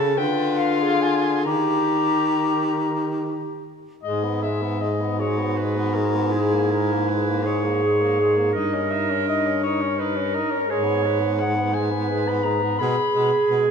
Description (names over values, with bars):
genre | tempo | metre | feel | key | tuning
classical, lyrical piece for single-reed quartet | 45-59 BPM (dotted quarters) | 6/8 | rubato | G# minor | A4 = 441 Hz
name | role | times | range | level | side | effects
mellow soprano saxophone | melody | 0.0-13.6 s | G#4 to B5 | -26 LUFS | left 6 dB | none
clear clarinet | second line | 0.0-13.7 s | E4 to C#5 | -25 LUFS | right 5 dB | none
clear baritone saxophone | bass | 0.0-13.7 s | G2 to D#3 | -24 LUFS | equal | none
clear tenor saxophone | accompaniment | 0.2-13.7 s | G#3 to G4 | -27 LUFS | left 3 dB | none
room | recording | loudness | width
wet concert hall reverb, RT60 2.1 s | none | -19 LUFS | side -6 dB against mid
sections
0.0-4.0 A section; 4.0-13.7 B section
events
none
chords
0.2 Ddim7; 1.5 D#; 4.0 G#m; 6.3 A#m7b5/G#; 8.5 D#7/G; 10.7 G#m; 12.8 G#m/B